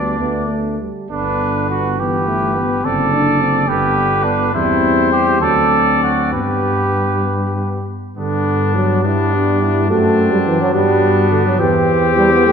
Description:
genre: classical, brass quintet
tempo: 64-72 BPM (dotted quarters)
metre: 6/8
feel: rubato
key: G major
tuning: A4 = 440 Hz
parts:
  - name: clear trumpet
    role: melody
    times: 0.0-12.5 s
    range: D4 to D5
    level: -21 LUFS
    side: left 6 dB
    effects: none
  - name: mellow trumpet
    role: second line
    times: 0.0-12.5 s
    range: B3 to A4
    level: -20 LUFS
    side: right 5 dB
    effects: none
  - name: dark trombone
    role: accompaniment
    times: 0.0-12.5 s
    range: D3 to B3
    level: -20 LUFS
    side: right 2 dB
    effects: none
  - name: mellow French horn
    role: accompaniment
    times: 0.0-12.5 s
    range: A3 to G4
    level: -21 LUFS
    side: left 5 dB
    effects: none
  - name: dark bass trombone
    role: bass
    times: 0.0-12.5 s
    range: F#1 to G2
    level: -20 LUFS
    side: equal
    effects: none
room: wet scoring stage reverb, RT60 1.7 s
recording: minimal, uncompressed stereo recording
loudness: -13 LUFS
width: side -7 dB against mid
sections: 0.0-8.2 A section; 8.2-12.5 B section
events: none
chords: 0.2 D5; 1.1 G; 2.9 D7/F#; 3.7 G; 4.5 C/E; 5.4 D7; 6.3 G; 9.9 D7/F#; 10.7 G; 11.6 C/E

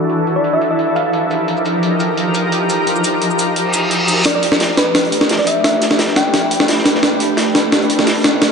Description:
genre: liquid drum and bass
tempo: 173 BPM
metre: 4/4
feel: straight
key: unclear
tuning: A4 = 440 Hz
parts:
  - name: shimmering ambient pad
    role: sustained chords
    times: 0.0-8.5 s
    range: E3 to D5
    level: -16 LUFS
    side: equal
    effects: chorus, built-in reverb
  - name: breakbeat sampler-style drum kit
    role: drums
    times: 0.1-8.5 s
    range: cabasa, hi-hat, snare drum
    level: -16 LUFS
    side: equal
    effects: none
  - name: thumb-piano-like synth pluck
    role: melody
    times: 0.4-1.4, 4.3-6.4 s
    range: B4 to G5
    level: -21 LUFS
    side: left 1 dB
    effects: chorus, cassette tape, ping-pong delay
  - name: reverse cymbal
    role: sound effects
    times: 3.7-4.3 s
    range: none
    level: -22 LUFS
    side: equal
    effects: none
  - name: crunchy breakbeat drum kit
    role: drums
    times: 4.3-8.5 s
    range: hi-hat, snare drum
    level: -22 LUFS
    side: equal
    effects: high-pass filter on hats, high-pass filter on snare, high-pass filter on room
room: wet huge ambient reverb, RT60 8.5 s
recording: dreamy mix soaked in reverb, low-pass filter, nothing above 10.3 kHz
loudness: -12 LUFS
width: side -5 dB against mid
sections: 0.0-4.3 A section; 4.3-8.5 B section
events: filter sweep 0.0-4.3; reverse cymbal 3.7-4.3; build-up 4.3-8.5; drum fill 4.3-8.5; filter sweep on ambient pad 4.3-8.5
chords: 0.0 E7sus4; 0.8 F9sus4; 4.3 A9sus4

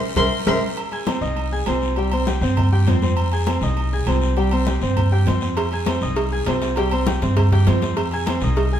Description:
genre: latin, salsa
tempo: 200 BPM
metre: 4/4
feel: straight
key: F minor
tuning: A4 = 435 Hz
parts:
  - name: warm violin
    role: melody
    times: 0.2-0.6 s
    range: C6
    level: -25 LUFS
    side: left 1 dB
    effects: none
  - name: bright concert grand piano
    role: accompaniment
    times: 0.2-8.8 s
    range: G3 to Ab6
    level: -23 LUFS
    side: equal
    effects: none
  - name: upright bass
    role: bass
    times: 0.2-8.8 s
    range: C2 to G2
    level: -20 LUFS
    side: equal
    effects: none
  - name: congas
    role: percussion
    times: 0.2-8.8 s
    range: none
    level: -28 LUFS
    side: left 3 dB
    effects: none
  - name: cowbell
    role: percussion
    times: 0.2-0.5, 5.6-8.7 s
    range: none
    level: -27 LUFS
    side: right 2 dB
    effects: none
  - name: guiro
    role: percussion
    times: 0.2-8.8 s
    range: none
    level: -36 LUFS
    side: left 4 dB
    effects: none
  - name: timbales and agogo bells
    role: percussion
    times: 0.2-8.7 s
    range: none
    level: -28 LUFS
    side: right 3 dB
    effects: none
room: wet stone room reverb, RT60 1.4 s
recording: band playing live in one room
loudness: -17 LUFS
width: side -10 dB against mid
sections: 0.8-8.8 A section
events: drum fill 0.0-0.8; band accent 0.0-0.8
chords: 0.0 C7; 0.8 Ab/C; 2.0 C5; 3.2 Fm7; 4.4 C5; 5.6 Fm7; 6.8 C5; 8.0 Fm7

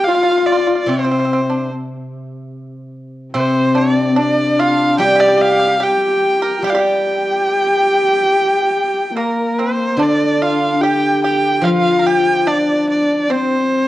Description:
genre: chinese traditional, Chinese chamber ensemble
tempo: 72 BPM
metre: 4/4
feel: straight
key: G yu mode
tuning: A4 = 442 Hz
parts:
  - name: clear erhu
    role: melody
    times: 0.0-13.9 s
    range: Bb4 to G5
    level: -17 LUFS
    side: right 1 dB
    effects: none
  - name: dark horsehead fiddle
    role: second line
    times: 0.0-13.9 s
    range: Bb3 to G4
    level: -17 LUFS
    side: left 2 dB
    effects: none
  - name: pipa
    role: second line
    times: 0.0-13.9 s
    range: Bb3 to Bb4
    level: -24 LUFS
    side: right 4 dB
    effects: none
  - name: steel-string zither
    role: accompaniment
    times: 0.9-13.9 s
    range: C3 to G3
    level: -20 LUFS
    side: right 1 dB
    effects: none
room: light reverb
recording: worn, warbling old tape, cassette tape, warbly pitch drift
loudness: -13 LUFS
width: side -15 dB against mid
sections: 0.0-10.0 A section; 10.0-13.9 B section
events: none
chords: none

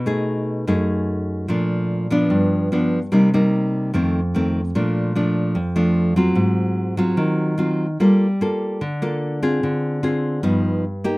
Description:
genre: bossa nova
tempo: 148 BPM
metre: 4/4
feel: straight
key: Bb major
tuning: A4 = 440 Hz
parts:
  - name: nylon-string guitar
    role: solo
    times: 0.0-11.2 s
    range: F2 to A4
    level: -18 LUFS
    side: equal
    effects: none
room: moderate small room ambience, RT60 0.5 s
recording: rough home demo mix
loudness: -18 LUFS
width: side -22 dB against mid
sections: 0.0-4.7 A section; 4.7-11.2 B section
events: none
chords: 0.0 B6; 1.5 Bbmaj7; 2.3 G7; 3.1 Cm7; 3.9 F7; 4.7 Bbmaj7; 6.4 Ab6; 8.0 Gm9; 9.6 Dm7b5; 10.4 G7b13

